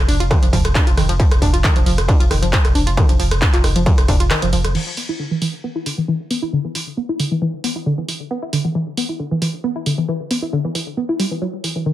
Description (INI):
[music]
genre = driving peak-time techno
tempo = 135 BPM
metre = 4/4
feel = straight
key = unclear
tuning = A4 = 442 Hz
[part]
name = saturated sub bass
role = bass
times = 0.0-4.7 s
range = F1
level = -19 LUFS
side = equal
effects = tube saturation, sidechain pumping, low-pass filter
[part]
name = analog pluck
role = riff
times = 0.1-11.9 s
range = D3 to F4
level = -21 LUFS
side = equal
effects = chorus, sidechain pumping, ping-pong delay
[part]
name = punchy analog drum machine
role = drums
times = 0.1-11.7 s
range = crash cymbal, handclaps, hi-hat, ride cymbal, rim click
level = -23 LUFS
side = right 1 dB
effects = sidechain pumping on hats, sidechain pumping on cymbals
[part]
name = electronic kick drum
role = drums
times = 0.3-4.2 s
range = none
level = -15 LUFS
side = equal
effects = distortion, overdrive
[sound]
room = little or no reverb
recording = none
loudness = -16 LUFS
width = side -13 dB against mid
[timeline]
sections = 0.0-4.8 A section; 4.8-11.9 B section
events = drop 0.0-4.8; break 4.3-4.8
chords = 0.0 N.C.; 4.8 E5